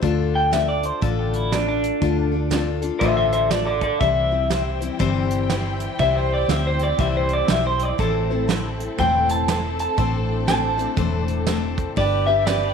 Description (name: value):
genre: honky-tonk and classic country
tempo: 120 BPM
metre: 4/4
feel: swing 62% on 8ths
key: C major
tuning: A4 = 440 Hz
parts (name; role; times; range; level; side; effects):
- picked steel-string acoustic guitar; accompaniment; 0.0-12.7 s; A2 to C5; -26 LUFS; left 9 dB; none
- vintage muted fingered electric bass; bass; 0.0-12.7 s; E1 to D2; -24 LUFS; right 1 dB; none
- soft brush drum kit; drums; 0.0-12.6 s; hi-hat, kick drum, snare drum; -26 LUFS; right 5 dB; none
- electric guitar through a small old amp; melody; 0.4-12.7 s; D4 to A5; -22 LUFS; equal; none
- rich studio string section; sustained chords; 4.0-12.7 s; E3 to G5; -31 LUFS; left 1 dB; none
room: moderate echo chamber reverb, RT60 1.2 s, small room ambience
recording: 1960s-style stereo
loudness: -18 LUFS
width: side -6 dB against mid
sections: 0.0-12.0 A section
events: clean electric guitar solo 0.0-12.0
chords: 0.0 Dm; 4.0 C; 8.0 Am; 12.0 G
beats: | 0.02 0.52 1.02 1.52 | 2.01 2.51 3.01 3.51 | 4.00 4.50 5.00 5.50 | 6.00 6.49 6.99 7.49 | 7.99 8.48 8.98 9.48 | 9.98 10.48 10.97 11.47 | 11.97 12.47